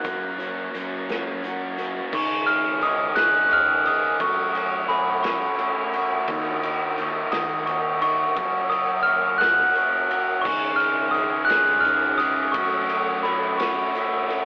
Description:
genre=indie rock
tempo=58 BPM (dotted quarters)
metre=6/8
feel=straight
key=unclear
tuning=A4 = 441 Hz
part: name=glockenspiel with soft plastic mallets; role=melody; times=0.0-14.3 s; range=Cb6 to Gb6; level=-24 LUFS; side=equal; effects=none
part: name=string machine, violas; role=sustained chords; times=0.0-14.4 s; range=Ab4 to Eb6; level=-40 LUFS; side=equal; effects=none
part: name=overdriven electric guitar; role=riff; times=0.0-14.4 s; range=Eb3 to Ab4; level=-34 LUFS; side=equal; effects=none
part: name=overdriven semi-hollow guitar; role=riff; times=0.0-14.4 s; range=Eb3 to Ab4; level=-32 LUFS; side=equal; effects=phaser
part: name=loose indie drum kit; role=drums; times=0.0-14.4 s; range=crash cymbal, hi-hat, kick drum, ride cymbal, snare drum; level=-31 LUFS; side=equal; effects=none
part: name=egg shaker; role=percussion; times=0.0-14.4 s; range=none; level=-64 LUFS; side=equal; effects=none
part: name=fuzz fingered electric bass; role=bass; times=0.1-13.8 s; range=Db2 to Gb2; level=-39 LUFS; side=equal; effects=overdrive
room=moderate studio reverb, RT60 0.6 s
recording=rough rehearsal-room recording, telephone sound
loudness=-22 LUFS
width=mono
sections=0.0-2.1 A section; 2.1-14.4 B section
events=none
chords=0.0 Gb; 2.1 Dbsus2; 4.2 Gbmadd9; 6.3 Ebm; 8.4 Gb; 10.5 Dbsus2; 12.5 Gbmadd9

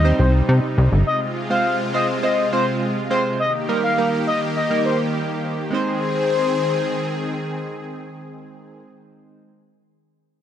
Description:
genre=pop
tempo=103 BPM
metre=4/4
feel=straight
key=Ab major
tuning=A4 = 439 Hz
part: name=expressive synth lead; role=melody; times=0.0-7.4 s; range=C5 to F5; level=-22 LUFS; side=left 3 dB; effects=chorus, ping-pong delay
part: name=chorused retro synth keys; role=accompaniment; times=0.0-9.5 s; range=G3 to C5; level=-25 LUFS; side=right 4 dB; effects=none
part: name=supersaw pad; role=sustained chords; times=0.0-8.8 s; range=C3 to Ab4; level=-25 LUFS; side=equal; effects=none
part: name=plucky analog bass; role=bass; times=0.0-1.0 s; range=G1 to C3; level=-14 LUFS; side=equal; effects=none
room=moderate plate reverb, RT60 3.1 s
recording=dark, warm production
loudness=-18 LUFS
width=side -10 dB against mid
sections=0.0-5.7 A section; 5.7-8.1 B section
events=none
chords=0.0 Cm; 1.1 Fm; 3.4 Eb; 5.7 Ab

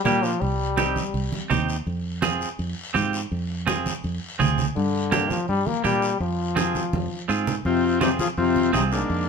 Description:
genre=latin, cumbia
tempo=166 BPM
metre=4/4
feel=straight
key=F dorian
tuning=A4 = 439 Hz
part: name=brilliant trombone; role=second line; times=0.0-1.5, 4.8-9.3 s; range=Ab2 to Bb3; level=-26 LUFS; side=left 5 dB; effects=none
part: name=semi-hollow electric guitar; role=accompaniment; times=0.1-9.0 s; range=Bb3 to Ab4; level=-25 LUFS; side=right 6 dB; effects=none
part: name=fingered electric bass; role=bass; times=0.1-9.3 s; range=C2 to Bb2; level=-27 LUFS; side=right 1 dB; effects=none
part: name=congas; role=percussion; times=0.1-9.3 s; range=none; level=-28 LUFS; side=right 5 dB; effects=none
part: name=guiro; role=percussion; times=0.1-9.3 s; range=none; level=-37 LUFS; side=left 4 dB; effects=none
part: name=overdriven combo organ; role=melody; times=7.7-9.3 s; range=Bb3 to Ab4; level=-21 LUFS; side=left 5 dB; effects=none
room=moderate studio reverb, RT60 0.8 s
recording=minimal, uncompressed stereo recording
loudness=-21 LUFS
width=side -5 dB against mid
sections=0.0-7.7 A section; 7.7-9.3 B section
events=trombone solo 0.0-7.7; drum fill 6.8-7.7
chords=0.4 Cm; 1.9 Fm; 4.8 Gm; 6.2 Fm

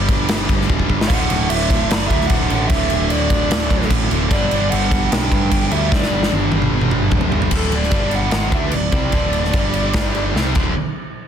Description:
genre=hard rock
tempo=149 BPM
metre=4/4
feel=straight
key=unclear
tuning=A4 = 441 Hz
part: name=high-gain distorted guitar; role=riff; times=0.0-10.7 s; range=D2 to D4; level=-25 LUFS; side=left 11 dB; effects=distortion
part: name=high-gain distorted guitar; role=riff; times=0.0-10.7 s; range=D2 to D4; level=-24 LUFS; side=right 12 dB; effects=distortion
part: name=growling picked electric bass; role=bass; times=0.0-10.7 s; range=D1 to G2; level=-22 LUFS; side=left 1 dB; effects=overdrive
part: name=big rock drum kit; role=drums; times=0.1-10.7 s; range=crash cymbal, kick drum, snare drum, splash cymbal, toms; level=-19 LUFS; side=equal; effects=none
part: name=lead guitar through a small cranked amp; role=melody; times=1.1-10.3 s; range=A4 to G5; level=-24 LUFS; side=right 2 dB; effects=overdrive, slapback echo
part: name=overdriven electric guitar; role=riff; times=1.1-7.5 s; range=D2 to G3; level=-25 LUFS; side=equal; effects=none
room=light reverb, studio ambience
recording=dense, heavily limited modern master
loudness=-15 LUFS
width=side -8 dB against mid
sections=0.0-7.5 A section; 7.5-10.8 B section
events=drum fill 0.7-1.1, 5.9-7.5, 10.4-10.8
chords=0.0 G5; 1.1 D; 4.3 G5; 7.5 D5; 7.9 G5; 8.3 D5; 9.5 G5; 10.4 C5; 10.6 D5; 10.8 N.C.

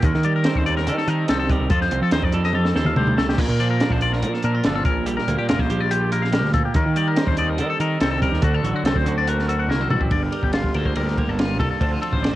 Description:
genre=math rock and midwest emo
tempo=143 BPM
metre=4/4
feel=straight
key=G minor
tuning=A4 = 443 Hz
part: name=twelve-string electric guitar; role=accompaniment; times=0.0-12.4 s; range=G2 to Bb4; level=-25 LUFS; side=right 5 dB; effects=cassette tape
part: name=twangy electric guitar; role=arpeggios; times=0.0-12.3 s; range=F4 to F#5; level=-25 LUFS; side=left 6 dB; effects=phaser, cassette tape
part: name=fuzz picked electric bass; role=bass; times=0.0-12.3 s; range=F1 to F3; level=-23 LUFS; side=equal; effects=overdrive
part: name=compact cocktail drum kit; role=drums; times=0.0-12.3 s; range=crash cymbal, hi-hat, kick drum, ride cymbal, snare drum, splash cymbal, toms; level=-23 LUFS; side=equal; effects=none
room=small room ambience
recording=home recording on cassette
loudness=-18 LUFS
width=side -15 dB against mid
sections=0.0-10.1 A section; 10.1-12.4 B section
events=drum fill 2.6-3.4, 9.7-10.1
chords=0.0 Eb6; 1.7 F7; 3.4 Bb; 4.9 Gm7; 6.8 Eb6; 8.4 D7; 10.1 Gm9; 11.8 Dm7

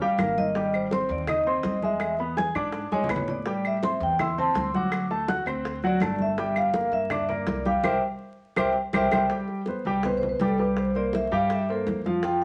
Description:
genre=Afro-Cuban jazz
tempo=164 BPM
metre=4/4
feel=straight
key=C major from 9.3 s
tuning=A4 = 440 Hz
part: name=vibraphone with medium mallets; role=melody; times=0.0-12.4 s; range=A4 to D6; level=-29 LUFS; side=equal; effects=none
part: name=warm grand piano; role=accompaniment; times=0.0-12.4 s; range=B2 to G#6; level=-30 LUFS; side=equal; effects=none
part: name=upright bass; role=bass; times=0.0-12.4 s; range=G1 to A2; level=-38 LUFS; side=equal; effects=none
part: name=bongos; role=percussion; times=0.0-12.4 s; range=none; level=-40 LUFS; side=equal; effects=none
part: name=congas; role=percussion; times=0.0-12.4 s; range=none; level=-34 LUFS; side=equal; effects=none
part: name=claves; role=percussion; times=0.2-9.2 s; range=none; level=-36 LUFS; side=equal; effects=none
room=wet studio reverb, RT60 0.8 s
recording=vinyl crackle, nothing above 10.8 kHz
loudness=-26 LUFS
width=mono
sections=0.0-9.3 A section; 9.3-12.4 B section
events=drum fill 2.9-3.5, 8.4-9.3; band accent 7.8-9.3; vibraphone solo 9.3-12.4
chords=0.0 Eb; 0.6 Abmaj7; 2.0 E7; 3.5 Am7; 4.9 D7; 6.4 Gm7; 7.8 C7; 9.3 C5

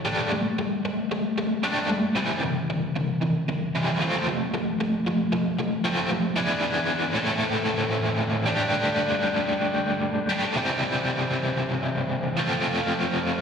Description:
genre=rock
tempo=114 BPM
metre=4/4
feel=straight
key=unclear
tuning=A4 = 440 Hz
part: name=crunchy overdriven guitar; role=solo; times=0.0-13.4 s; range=A2 to A4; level=-23 LUFS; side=equal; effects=tremolo, slapback echo
room=light reverb, digital ambience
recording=live gig heard through the venue's PA, recital hall reverb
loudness=-23 LUFS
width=side -6 dB against mid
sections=0.0-6.4 A section; 6.4-13.4 B section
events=none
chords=0.1 Gsus2; 2.2 C; 4.0 F; 6.4 E7; 7.2 Am; 8.5 Gsus2; 10.6 C; 12.4 F

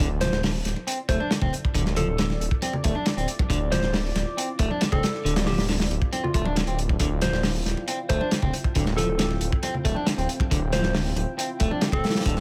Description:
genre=breakbeat, breaks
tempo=137 BPM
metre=4/4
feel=straight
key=D minor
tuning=A4 = 440 Hz
part: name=deep dark ambient pad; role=sustained chords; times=1.0-12.4 s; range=C4 to G5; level=-38 LUFS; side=equal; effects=chorus, built-in reverb, sidechain pumping
part: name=clean electric guitar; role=riff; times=0.0-12.3 s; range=D3 to D4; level=-32 LUFS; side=equal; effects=overdrive, delay
part: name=detuned saw bass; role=bass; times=0.0-12.4 s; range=D1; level=-30 LUFS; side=equal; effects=none
part: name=crunchy breakbeat drum kit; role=drums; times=0.0-12.4 s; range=hi-hat, kick drum, snare drum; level=-28 LUFS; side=equal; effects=none
part: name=congas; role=percussion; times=0.0-12.4 s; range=none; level=-36 LUFS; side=equal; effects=none
part: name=soft struck synth lead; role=melody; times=0.2-12.4 s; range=F4 to C5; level=-34 LUFS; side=equal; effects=chorus, telephone sound, delay
room=small room reverb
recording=none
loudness=-25 LUFS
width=mono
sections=0.0-12.4 A section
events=drop 0.0-12.4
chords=0.0 Dm9

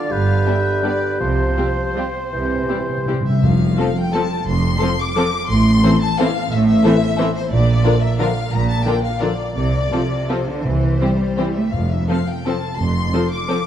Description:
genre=classical, orchestral ballroom waltz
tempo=154-194 BPM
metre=3/4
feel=rubato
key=F major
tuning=A4 = 440 Hz
part: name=warm symphonic violin section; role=melody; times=0.0-13.7 s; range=C5 to D6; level=-25 LUFS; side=left 5 dB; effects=none
part: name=concert flute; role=second line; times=0.0-3.2 s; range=G6 to A6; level=-28 LUFS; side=left 4 dB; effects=none
part: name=dark clarinet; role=second line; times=0.0-3.2 s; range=G4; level=-27 LUFS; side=left 1 dB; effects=none
part: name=warm oboe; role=second line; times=0.0-3.2 s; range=B4 to D5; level=-28 LUFS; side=right 2 dB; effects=none
part: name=mellow bassoon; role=accompaniment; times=0.0-3.2 s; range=D3 to F3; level=-27 LUFS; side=right 3 dB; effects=none
part: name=rich symphonic cello section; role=bass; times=0.1-13.1 s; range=F2 to A3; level=-21 LUFS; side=right 2 dB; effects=none
part: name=rich symphonic double bass section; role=bass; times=0.1-13.1 s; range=F1 to C2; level=-22 LUFS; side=right 2 dB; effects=none
part: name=warm symphonic violin section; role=second line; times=0.5-13.6 s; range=D4 to C5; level=-28 LUFS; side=left 4 dB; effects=none
part: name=rich symphonic viola section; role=accompaniment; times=0.5-13.6 s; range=D3 to D4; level=-24 LUFS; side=right 1 dB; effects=none
part: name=timpani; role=percussion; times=1.2-3.9, 10.6-12.2 s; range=F2 to C3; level=-23 LUFS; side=left 1 dB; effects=none
part: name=mellow French horn section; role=sustained chords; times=3.8-13.6 s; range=E3 to Bb4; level=-26 LUFS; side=left 4 dB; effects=none
room=moderate concert hall reverb, RT60 2.2 s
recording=dark, warm production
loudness=-16 LUFS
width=side -10 dB against mid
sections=0.0-3.4 A section; 3.4-13.7 B section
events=timpani fill 2.3-3.4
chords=0.1 G7; 1.2 Csus4; 2.3 C; 3.4 F; 5.5 Am; 7.5 Bb; 9.6 F/C; 10.6 C; 11.7 F

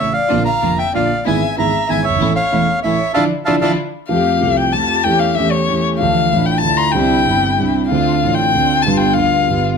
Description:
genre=tango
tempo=189 BPM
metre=3/4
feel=rubato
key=D harmonic minor, F major from 4.1 s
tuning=A4 = 440 Hz
part: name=bandoneon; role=melody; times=0.0-3.7 s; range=E5 to Bb5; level=-18 LUFS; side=right 2 dB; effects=none
part: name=warm violin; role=second line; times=0.0-9.6 s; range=C#5 to C6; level=-17 LUFS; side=left 7 dB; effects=none
part: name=dark concert grand piano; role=accompaniment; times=0.0-9.8 s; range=E1 to F5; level=-17 LUFS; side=right 3 dB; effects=none
part: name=warm symphonic string section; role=stabs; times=0.3-9.8 s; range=E3 to G4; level=-23 LUFS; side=right 1 dB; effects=slapback echo
room=light reverb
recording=close, detailed microphones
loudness=-13 LUFS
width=side -6 dB against mid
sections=0.0-4.1 A section; 4.1-9.8 B section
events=band accent 3.1-4.1; violin solo 4.1-9.8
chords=0.3 Bb; 1.3 E/G#; 2.2 A; 3.1 Dmadd9; 4.1 Fadd9; 5.1 A7/E; 6.0 Dmadd9; 7.0 Cadd9; 7.9 Dm7; 8.9 G7

